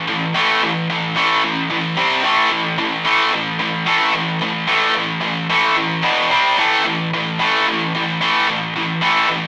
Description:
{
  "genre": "rock",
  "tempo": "110 BPM",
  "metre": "4/4",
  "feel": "straight",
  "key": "unclear",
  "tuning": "A4 = 440 Hz",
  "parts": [
    { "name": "heavy high-gain guitar", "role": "solo", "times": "0.0-9.5 s", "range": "E2 to C4", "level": "-17 LUFS", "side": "equal", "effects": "distortion" }
  ],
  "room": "moderate studio reverb, RT60 0.6 s",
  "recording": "rough rehearsal-room recording, warm saturation, small speaker sound",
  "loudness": "-17 LUFS",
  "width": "mono",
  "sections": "0.0-9.5 A section",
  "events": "none",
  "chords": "0.0 A5; 2.0 C5; 2.2 A5; 6.0 E5; 6.3 C5; 6.6 A5"
}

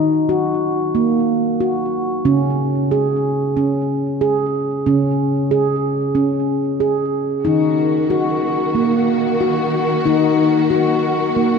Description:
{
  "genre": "world meditative, meditative tuned percussion",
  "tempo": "92 BPM",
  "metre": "4/4",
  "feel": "swing 55% on 16ths",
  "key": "Eb minor",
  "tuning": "A4 = 442 Hz",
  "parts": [
    { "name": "handpan", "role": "arpeggios", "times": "0.0-11.6 s", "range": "Db3 to Ab4", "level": "-16 LUFS", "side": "equal", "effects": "ping-pong delay" },
    { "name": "warm studio string section", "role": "sustained chords", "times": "7.4-11.6 s", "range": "Eb3 to Gb4", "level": "-21 LUFS", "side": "equal", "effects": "none" }
  ],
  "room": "wet cathedral reverb, RT60 4.4 s",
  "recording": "dark, warm production",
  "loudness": "-15 LUFS",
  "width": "side -5 dB against mid",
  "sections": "0.0-11.6 A section",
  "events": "none",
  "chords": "0.0 Ebm; 2.3 Db5; 7.5 Ebm"
}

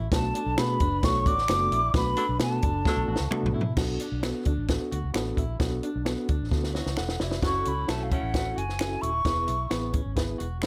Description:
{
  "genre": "uptempo 1960s-style soul",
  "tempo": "131 BPM",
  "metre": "4/4",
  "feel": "straight",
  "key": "unclear",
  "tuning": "A4 = 440 Hz",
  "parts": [
    { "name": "electric guitar through a small old amp", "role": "riff", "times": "0.0-10.6 s", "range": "A3 to F#4", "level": "-40 LUFS", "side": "equal", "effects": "none" },
    { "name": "vintage muted fingered electric bass", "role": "bass", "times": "0.0-10.7 s", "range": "D#1 to B2", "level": "-33 LUFS", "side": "equal", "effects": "none" },
    { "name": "breathy mellow silver concert flute", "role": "melody", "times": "0.1-3.5, 7.5-9.9 s", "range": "E#5 to D6", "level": "-31 LUFS", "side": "equal", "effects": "slapback echo" },
    { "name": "vibraphone with soft mallets", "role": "second line", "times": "0.1-3.5 s", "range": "A4 to D5", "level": "-42 LUFS", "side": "equal", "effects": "none" },
    { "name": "reed electric piano", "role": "accompaniment", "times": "0.1-10.7 s", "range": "A3 to F#5", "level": "-35 LUFS", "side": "equal", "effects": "overdrive, fast tremolo" },
    { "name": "compact cocktail drum kit", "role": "drums", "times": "0.1-10.7 s", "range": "crash cymbal, hi-hat, kick drum, snare drum, toms", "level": "-30 LUFS", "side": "equal", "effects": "none" },
    { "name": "finger snap", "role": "percussion", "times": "0.6-10.7 s", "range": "none", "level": "-39 LUFS", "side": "equal", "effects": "none" },
    { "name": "mellow saxophone section", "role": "second line", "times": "2.2-3.2, 7.4-8.5 s", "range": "A3 to A4", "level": "-38 LUFS", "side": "equal", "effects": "none" }
  ],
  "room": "light reverb, small room ambience",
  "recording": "none",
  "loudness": "-27 LUFS",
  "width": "mono",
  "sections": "0.0-3.8 A section; 3.8-7.4 B section; 7.4-10.7 C section",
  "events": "band accent 1.9-3.8; drum fill 2.9-3.8, 6.5-7.4",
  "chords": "0.1 Bm7; 7.4 F#m7; 9.3 E"
}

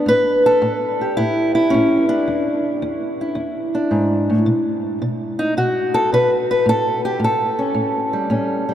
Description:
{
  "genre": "acoustic country blues, solo or duo",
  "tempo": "110 BPM",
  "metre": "4/4",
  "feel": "swing 68% on 8ths",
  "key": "unclear",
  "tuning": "A4 = 441 Hz",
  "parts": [
    { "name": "fingerpicked old ladder-braced acoustic guitar", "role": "solo", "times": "0.0-8.7 s", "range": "E2 to B4", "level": "-16 LUFS", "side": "equal", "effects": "none" }
  ],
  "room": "wet huge ambient reverb, RT60 7.7 s",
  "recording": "in a vast, echoing space",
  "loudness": "-16 LUFS",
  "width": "side -10 dB against mid",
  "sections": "0.0-8.7 A section",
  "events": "none",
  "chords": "0.1 A5; 2.3 E7; 4.5 N.C.; 6.7 A7"
}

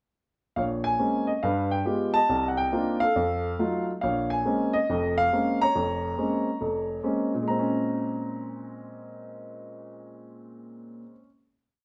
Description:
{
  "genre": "solo jazz",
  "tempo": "139 BPM",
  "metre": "4/4",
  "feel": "swing 67% on 8ths",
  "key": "Bb minor",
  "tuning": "A4 = 441 Hz",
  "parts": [
    { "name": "warm grand piano", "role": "solo", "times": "0.6-11.3 s", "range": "F1 to Bb5", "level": "-27 LUFS", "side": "equal", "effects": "none" }
  ],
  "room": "light reverb",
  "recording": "none",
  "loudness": "-26 LUFS",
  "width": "mono",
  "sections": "0.6-7.5 A section; 7.5-10.9 final chord",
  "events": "none",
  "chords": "0.6 Bbm9; 1.4 G7b9; 2.3 Cm11; 3.1 F7b9; 4.0 Bbm9"
}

